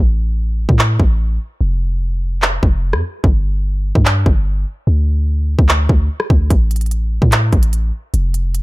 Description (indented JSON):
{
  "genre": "hip hop, trap",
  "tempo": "147 BPM",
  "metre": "4/4",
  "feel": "half-time",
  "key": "unclear",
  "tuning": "A4 = 441 Hz",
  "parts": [
    { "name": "warm 808-style bass", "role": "bass", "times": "0.0-8.6 s", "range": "F1 to A2", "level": "-15 LUFS", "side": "equal", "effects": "none" },
    { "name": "trap drum kit", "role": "drums", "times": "0.7-8.6 s", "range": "handclaps, hi-hat, kick drum, rim click", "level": "-14 LUFS", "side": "equal", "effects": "none" }
  ],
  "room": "little or no reverb",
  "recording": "none",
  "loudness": "-13 LUFS",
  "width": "side -20 dB against mid",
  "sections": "0.0-8.6 A section",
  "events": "break 0.0-6.5",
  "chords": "none"
}